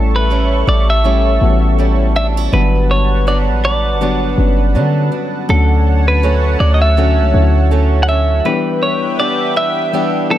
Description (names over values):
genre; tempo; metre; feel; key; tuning
contemporary R&B; 81 BPM; 4/4; swing 58% on 16ths; unclear; A4 = 440 Hz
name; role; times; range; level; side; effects
semi-hollow electric guitar; melody; 0.0-10.4 s; A4 to F#5; -18 LUFS; equal; tape echo
soft electric-piano-like synth keys; accompaniment; 0.0-10.4 s; D3 to A4; -20 LUFS; left 6 dB; chorus
chorused pulse-width pad; sustained chords; 0.0-10.4 s; A4 to C#6; -23 LUFS; equal; none
fingerpicked acoustic archtop guitar; arpeggios; 0.0-10.4 s; G2 to G4; -22 LUFS; right 7 dB; tape echo
warm 808-style bass; bass; 0.0-8.4 s; G1 to D3; -13 LUFS; equal; none
room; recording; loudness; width
digital ambience; none; -11 LUFS; side -12 dB against mid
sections
0.0-10.4 A section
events
break 8.4-10.4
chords
0.0 A7; 2.5 Gmaj7; 5.5 Dmaj7; 8.4 Em7